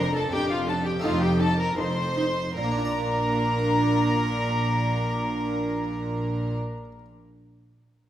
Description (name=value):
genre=classical, baroque-style concerto movement with solo episodes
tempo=74-88 BPM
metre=4/4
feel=straight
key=Bb major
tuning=A4 = 441 Hz
part: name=rich violin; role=melody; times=0.0-6.6 s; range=F4 to C5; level=-32 LUFS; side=left 1 dB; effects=none
part: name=warm chamber violin section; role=melody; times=0.0-6.6 s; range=F5 to C6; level=-31 LUFS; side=left 3 dB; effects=none
part: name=warm chamber violin section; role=second line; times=0.0-6.5 s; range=F4 to C5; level=-32 LUFS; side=left 1 dB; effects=none
part: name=dark chamber viola section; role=accompaniment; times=0.0-6.6 s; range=D4 to Eb4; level=-30 LUFS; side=right 2 dB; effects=none
part: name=harpsichord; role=accompaniment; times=0.0-7.1 s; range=F2 to D5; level=-34 LUFS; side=equal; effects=none
part: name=rich chamber cello section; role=bass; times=0.0-6.6 s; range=F2 to Bb2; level=-28 LUFS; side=right 1 dB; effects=none
part: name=warm studio double bass section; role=bass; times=0.0-6.6 s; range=F1 to Bb1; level=-32 LUFS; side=right 1 dB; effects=none
room=wet recital hall reverb, RT60 1.8 s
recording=heard from further back in the room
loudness=-23 LUFS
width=side -12 dB against mid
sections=0.0-2.6 A section; 2.6-5.8 B section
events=slowing down 0.0-2.6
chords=0.0 Bb/F; 1.0 F7; 2.6 Bb